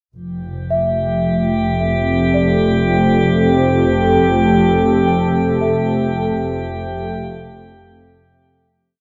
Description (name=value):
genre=ambient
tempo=55 BPM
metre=4/4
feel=straight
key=F major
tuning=A4 = 441 Hz
part: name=warm analog pad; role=sustained chords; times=0.1-8.9 s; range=F3 to A4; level=-18 LUFS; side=equal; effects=chorus
part: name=drifting glass-harmonics texture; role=texture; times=0.9-8.9 s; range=G4 to G5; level=-24 LUFS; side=equal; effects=chorus, built-in reverb
part: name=muted symphonic double bass section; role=bass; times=0.2-8.8 s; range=F1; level=-25 LUFS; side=equal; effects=none
part: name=large celesta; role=arpeggios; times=0.7-9.0 s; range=D5 to G5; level=-26 LUFS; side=equal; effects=delay
room=wet huge ambient reverb, RT60 8.1 s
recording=none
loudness=-16 LUFS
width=mono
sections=0.2-8.9 A section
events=fade-out on celesta 0.2-8.9; filter sweep on analog synth pad 0.2-8.9; fade-out 4.5-8.9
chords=0.2 Fadd9